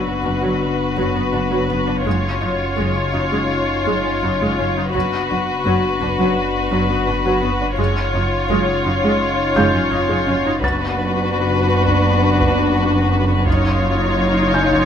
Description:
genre	cinematic, suspense film score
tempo	84 BPM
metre	4/4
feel	straight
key	unclear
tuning	A4 = 441 Hz
part	muted chamber violin section	melody	0.0-14.9 s	B4 to C#5	-23 LUFS	left 3 dB	none
part	muted studio violin section	second line	0.0-14.9 s	E#4 to F#4	-22 LUFS	left 2 dB	none
part	muted symphonic viola section	accompaniment	0.0-14.9 s	F#3 to D#4	-24 LUFS	right 2 dB	none
part	dark French horn section	sustained chords	0.0-14.9 s	B3 to D#4	-24 LUFS	left 3 dB	none
part	organ-like drone	drone	0.0-14.9 s	F#1	-26 LUFS	equal	ensemble chorus, built-in reverb
part	felt-muted upright piano	texture	0.0-2.1, 9.6-14.9 s	E#5 to A6	-27 LUFS	equal	none
part	muted chamber cello section	bass	0.2-14.9 s	F#2	-25 LUFS	right 2 dB	none
part	muted studio double bass section	bass	0.2-14.9 s	F#1	-24 LUFS	right 2 dB	none
part	taiko ensemble	drums	4.9-14.9 s	none	-25 LUFS	right 1 dB	none
room	moderate scoring stage reverb, RT60 1.9 s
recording	none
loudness	-16 LUFS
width	side -8 dB against mid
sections	0.0-14.9 A section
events	none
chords	0.0 Bm/F#; 2.1 C#add9/F#; 4.9 Bm/F#; 7.8 C#add9/F#; 10.6 Bm/F#; 13.5 C#add9/F#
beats	0.61 1.33 | 2.06 2.78 3.50 4.23 | 4.95 5.66 6.36 7.07 | 7.79 8.49 9.20 9.92 | 10.62 11.33 12.04 12.75 | 13.46 14.18

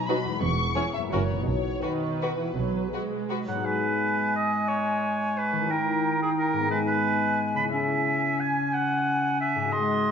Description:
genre	classical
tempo	155-195 BPM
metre	3/4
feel	rubato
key	B major, G# minor from 3.6 s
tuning	A4 = 445 Hz
part	muted studio violin section	melody	0.0-3.3 s	B4 to C#6	-32 LUFS	left 3 dB	none
part	concert harp	arpeggios	0.0-10.1 s	E2 to B4	-31 LUFS	left 4 dB	none
part	muted studio violin section	second line	0.1-3.4 s	F#4 to C#5	-34 LUFS	left 2 dB	none
part	muted studio viola section	accompaniment	0.1-3.6 s	D#3 to D#4	-32 LUFS	right 4 dB	none
part	muted studio cello section	bass	0.4-2.9 s	E2 to B2	-33 LUFS	right 5 dB	none
part	muted studio double bass section	bass	0.4-2.8 s	E1 to B1	-32 LUFS	right 5 dB	none
part	warm oboe	second line	3.5-10.1 s	G#4 to B5	-27 LUFS	right 3 dB	none
part	concert flute	second line	3.6-10.1 s	G5 to B#5	-30 LUFS	left 2 dB	none
part	warm clarinet	second line	3.6-10.1 s	G#3 to D#4	-29 LUFS	left 1 dB	none
room	wet recital hall reverb, RT60 1.5 s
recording	nothing above 7.7 kHz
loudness	-24 LUFS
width	side -7 dB against mid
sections	0.0-3.6 A section; 3.6-10.1 B section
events	none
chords	0.4 C#m/E; 1.1 F#7; 1.5 B; 3.6 G#m; 5.7 D#7b9; 6.7 G#m; 7.7 C#m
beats	0.09 | 0.43 0.77 1.13 | 1.48 1.84 2.22 | 2.57 2.93 3.30 | 3.65 3.99 4.35 | 4.68 5.02 5.37 | 5.70 6.04 6.39 | 6.71 7.05 7.40 | 7.72 8.05 8.40 | 8.73 9.06 9.41 | 9.73 10.06

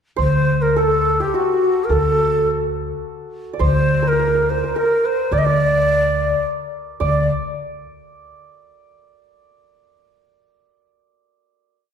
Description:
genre	Persian modal ensemble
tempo	106 BPM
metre	3/4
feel	straight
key	D dastgah homayun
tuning	A4 = 440 Hz
part	breathy reedy ney	melody	0.2-7.3 s	F#4 to Eb5+48c	-18 LUFS	left 1 dB	none
part	santur	second line	0.2-7.6 s	F#4 to D5	-24 LUFS	right 5 dB	none
part	upright bass	bass	0.2-7.3 s	D2	-20 LUFS	left 1 dB	none
room	wet recital hall reverb, RT60 1.4 s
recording	recorded in a church or concert hall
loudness	-16 LUFS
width	side -7 dB against mid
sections	0.2-7.0 A section; 7.0-8.7 final note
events	none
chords	none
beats	| 0.19 0.76 1.33 | 1.90 2.47 3.03 | 3.60 4.17 4.74 | 5.30 5.87 6.44 | 7.01 7.58

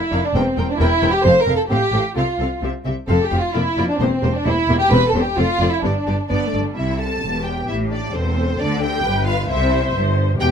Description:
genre	quick classical-period movement for string orchestra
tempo	132 BPM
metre	2/4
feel	straight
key	C major from 4.9 s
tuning	A4 = 440 Hz
part	warm studio violin section	second line	0.0-10.5 s	C4 to C5	-20 LUFS	equal	none
part	rich studio violin section	melody	0.1-10.5 s	C5 to A5	-27 LUFS	left 1 dB	none
part	warm studio viola section	accompaniment	0.1-10.5 s	G3 to C5	-26 LUFS	left 2 dB	none
part	bright studio cello section	bass	0.1-10.5 s	E2 to D3	-23 LUFS	equal	none
part	rich studio double bass section	bass	0.1-10.5 s	E1 to D2	-22 LUFS	right 1 dB	none
room	little or no reverb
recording	close, detailed microphones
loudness	-16 LUFS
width	side -7 dB against mid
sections	0.0-6.8 A section; 6.8-10.5 B section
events	none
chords	0.3 C7/E; 1.2 F; 1.7 F/A; 2.2 F/C; 2.6 C; 3.1 F5; 3.5 Bb/F; 4.0 C7/E; 4.9 C; 5.4 Dm7; 5.8 G; 6.8 C; 7.2 Em; 7.7 Am; 8.6 D5; 9.0 G7; 9.5 C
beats	| 0.35 0.80 | 1.24 1.70 | 2.16 2.62 | 3.09 3.55 | 4.01 4.46 | 4.92 5.37 | 5.83 6.30 | 6.77 7.23 | 7.69 8.14 | 8.60 9.05 | 9.50 9.95 | 10.40

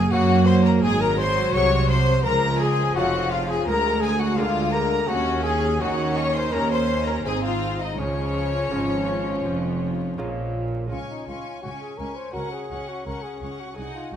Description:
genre	classical, baroque-style concerto movement with solo episodes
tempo	84 BPM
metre	4/4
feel	straight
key	Db major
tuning	A4 = 439 Hz
part	clear chamber violin section	melody	0.0-14.2 s	Db5 to Db6	-31 LUFS	left 2 dB	none
part	dark trumpet	melody	0.0-14.2 s	Db4 to Db5	-27 LUFS	left 2 dB	none
part	clear chamber violin section	second line	0.0-14.1 s	Db4 to Ab5	-29 LUFS	left 4 dB	none
part	lute	accompaniment	0.0-14.2 s	D2 to Ab4	-31 LUFS	right 1 dB	none
part	rich chamber viola section	accompaniment	0.0-14.2 s	F3 to Eb4	-29 LUFS	equal	none
part	rich chamber double bass section	bass	0.0-14.2 s	F1 to Gb2	-28 LUFS	right 2 dB	none
part	rich studio cello section	bass	0.0-14.2 s	C2 to Gb3	-27 LUFS	right 2 dB	none
room	wet scoring stage reverb, RT60 1.5 s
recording	minimal, uncompressed stereo recording, vinyl crackle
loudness	-20 LUFS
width	side -9 dB against mid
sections	0.0-10.9 A section; 10.9-14.2 B section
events	none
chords	0.0 Gb; 0.8 Ab7; 2.2 Db; 3.7 Bb7/D; 5.1 Ebm7; 7.3 Ab; 8.0 Db; 12.3 Gb5/Db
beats	0.12 0.83 1.54 | 2.25 2.96 3.67 4.38 | 5.09 5.81 6.53 7.25 | 7.98 8.72 9.45 10.18 | 10.91 11.63 12.35 13.06 | 13.78

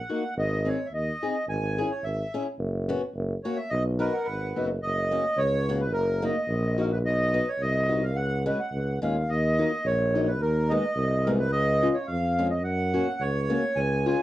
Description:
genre	alpine folk, alpine dance band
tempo	107 BPM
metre	2/4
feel	straight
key	B major, F# major from 4.8 s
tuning	A4 = 440 Hz
part	accordion	melody	0.0-14.2 s	A#4 to G#5	-28 LUFS	right 1 dB	none
part	picked old ladder-braced acoustic guitar	accompaniment	0.1-14.2 s	F#3 to G#4	-29 LUFS	left 2 dB	none
part	warm tuba	bass	0.4-14.1 s	F#1 to F#2	-27 LUFS	equal	tube saturation
room	moderate studio ambience, RT60 0.5 s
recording	worn, warbling old tape, cassette tape, warbly pitch drift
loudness	-24 LUFS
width	side -15 dB against mid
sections	0.0-4.8 A section; 4.8-14.2 B section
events	none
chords	0.4 G#; 1.5 C#m/G#; 2.6 F#sus4; 3.2 F#; 3.7 B; 4.8 F#; 5.9 D#m/F#; 7.1 B; 8.2 C#sus4; 8.7 C#add9; 9.3 D#m; 10.4 G#m/D#; 11.5 C#; 12.6 F#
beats	| 0.37 0.93 | 1.49 2.04 | 2.60 3.15 | 3.71 4.27 | 4.83 5.38 | 5.95 6.50 | 7.05 7.61 | 8.16 8.72 | 9.29 9.85 | 10.41 10.97 | 11.53 12.09 | 12.65 13.21 | 13.78

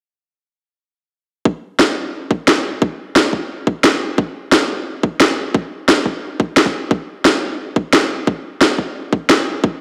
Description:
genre	liquid drum and bass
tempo	176 BPM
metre	4/4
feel	straight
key	none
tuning	none
part	electronic kick drum	drums	1.5-9.7 s	none	-18 LUFS	equal	high-pass filter on kick, studio reverb
part	electronic snare drum	drums	1.8-9.4 s	none	-17 LUFS	equal	studio reverb
room	wet lush hall reverb, RT60 1.7 s, digital ambience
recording	dark, warm production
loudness	-17 LUFS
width	mono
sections	1.5-9.8 A section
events	none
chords	none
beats	| 1.45 1.79 2.14 2.48 | 2.82 3.16 3.50 3.84 | 4.18 4.52 4.86 5.20 | 5.54 5.89 6.23 6.57 | 6.91 7.25 7.59 7.93 | 8.27 8.61 8.95 9.29 | 9.64

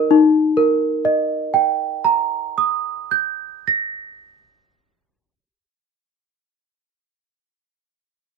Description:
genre	classical, lullaby for celesta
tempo	67 BPM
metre	3/4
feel	straight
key	Eb major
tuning	A4 = 437 Hz
part	small celesta	solo	0.0-7.7 s	Eb4 to Bb6	-16 LUFS	right 1 dB	none
room	light reverb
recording	close, detailed microphones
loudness	-17 LUFS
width	side -5 dB against mid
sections	0.1-5.5 A section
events	none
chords	0.1 Eb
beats	| 0.13 1.02 1.91 | 2.80 3.69 4.58

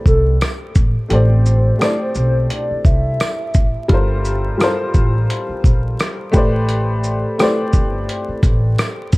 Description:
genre	lo-fi hip hop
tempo	86 BPM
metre	4/4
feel	swing 57% on 16ths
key	A minor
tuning	A4 = 442 Hz
part	warm upright piano	accompaniment	0.0-9.2 s	G3 to D5	-21 LUFS	left 1 dB	cassette tape
part	hollow clarinet-like synth lead	melody	0.1-3.9 s	A4 to E5	-23 LUFS	equal	chorus
part	upright bass	bass	0.1-9.2 s	G1 to C2	-17 LUFS	equal	none
part	lo-fi sampler-style drum kit	drums	0.1-9.2 s	hi-hat, kick drum, rim click, shaker	-16 LUFS	equal	none
part	tambourine	percussion	0.4-9.0 s	none	-36 LUFS	right 4 dB	none
room	small room ambience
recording	dark, warm production, vinyl crackle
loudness	-14 LUFS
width	side -22 dB against mid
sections	0.0-9.2 A section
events	none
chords	0.0 Am11; 3.9 Gm11; 6.3 Am11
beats	0.41 | 1.11 1.80 2.50 3.20 | 3.90 4.60 5.29 5.99 | 6.69 7.39 8.08 8.78

